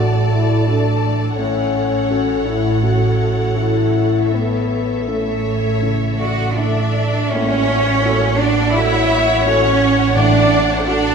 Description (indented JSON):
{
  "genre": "cinematic, emotional film score for orchestra",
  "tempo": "82 BPM",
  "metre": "4/4",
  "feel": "uneven beats, rubato",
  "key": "A major",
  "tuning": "A4 = 440 Hz",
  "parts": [
    { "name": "warm symphonic violin section", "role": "melody", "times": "0.0-11.1 s", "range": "E5 to A5", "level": "-28 LUFS", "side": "left 5 dB", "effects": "none" },
    { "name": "warm symphonic violin section", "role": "second line", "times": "0.0-11.1 s", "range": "C#5 to F#5", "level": "-23 LUFS", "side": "left 2 dB", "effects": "none" },
    { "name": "felt-muted upright piano", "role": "accompaniment", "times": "0.0-11.1 s", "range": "A2 to A4", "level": "-25 LUFS", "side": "right 1 dB", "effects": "none" },
    { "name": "rich symphonic viola section", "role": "accompaniment", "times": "0.0-11.1 s", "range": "F#4 to D5", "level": "-24 LUFS", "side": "equal", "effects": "none" },
    { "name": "mellow French horn section", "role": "sustained chords", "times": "0.0-6.6 s", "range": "A3 to F#4", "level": "-20 LUFS", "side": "left 4 dB", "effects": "none" },
    { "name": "rich symphonic cello section", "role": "bass", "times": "0.0-11.1 s", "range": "A2 to F#4", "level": "-20 LUFS", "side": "right 3 dB", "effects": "none" },
    { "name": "rich symphonic double bass section", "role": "bass", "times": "0.0-11.1 s", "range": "A1", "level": "-20 LUFS", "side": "right 2 dB", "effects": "none" },
    { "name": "cymbal swell and tam-tam", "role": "percussion", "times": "4.3-10.1 s", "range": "none", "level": "-28 LUFS", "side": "equal", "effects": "none" },
    { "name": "timpani", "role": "percussion", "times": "10.2-11.1 s", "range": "A2", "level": "-19 LUFS", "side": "right 2 dB", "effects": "none" }
  ],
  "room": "wet recital hall reverb, RT60 1.6 s",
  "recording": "recorded in a church or concert hall",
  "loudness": "-14 LUFS",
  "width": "side -6 dB against mid",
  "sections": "0.0-7.3 A section; 7.3-11.1 A section",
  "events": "band accent 7.3-8.0",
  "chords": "0.0 D/A; 1.4 A6; 10.2 D/A"
}